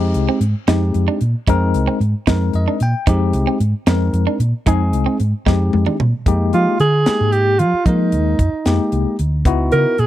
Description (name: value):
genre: electric jazz fusion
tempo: 75 BPM (dotted quarters)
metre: 6/8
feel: straight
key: F dorian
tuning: A4 = 445 Hz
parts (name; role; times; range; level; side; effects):
- bell-like tine electric piano; accompaniment; 0.0-10.0 s; Ab3 to G5; -20 LUFS; left 5 dB; medium stereo tremolo
- clean electric guitar; stabs; 0.0-6.0 s; C4 to Eb4; -23 LUFS; right 12 dB; wide subtle chorus
- hollow-body short-scale fingered electric bass; bass; 0.0-10.1 s; C2 to F3; -17 LUFS; equal; none
- tight funk drum kit; drums; 0.1-10.1 s; hi-hat, kick drum, snare drum, toms; -18 LUFS; equal; none
- mellow alto saxophone; melody; 6.5-10.1 s; Eb4 to Bb4; -17 LUFS; right 3 dB; tape echo
room: little or no reverb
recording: dry, close 1970s-style studio recording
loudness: -14 LUFS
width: side -13 dB against mid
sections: 0.0-6.3 A section; 6.3-10.1 B section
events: tine electric piano fill 2.3-3.1; drum fill 5.5-6.3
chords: 0.0 Fm11; 9.5 Dbm11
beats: 0.69 | 1.49 2.28 | 3.08 3.88 | 4.67 5.47 | 6.27 7.07 | 7.86 8.66 | 9.46